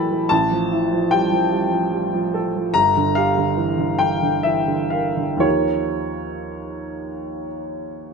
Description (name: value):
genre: classical, impressionist solo piano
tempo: 58-76 BPM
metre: 3/4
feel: rubato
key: F major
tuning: A4 = 441 Hz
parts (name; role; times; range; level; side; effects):
- clear baby grand piano; solo; 0.0-8.1 s; G1 to B5; -18 LUFS; equal; none
room: moderate recital hall reverb, RT60 1.8 s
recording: close, detailed microphones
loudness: -17 LUFS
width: side -5 dB against mid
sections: 0.0-8.1 A section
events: none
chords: 0.3 Fmaj9/A; 2.7 Gm7; 5.4 Eb9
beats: | 0.31 1.11 1.91 | 2.74 3.57 4.46 | 5.44 6.48 7.49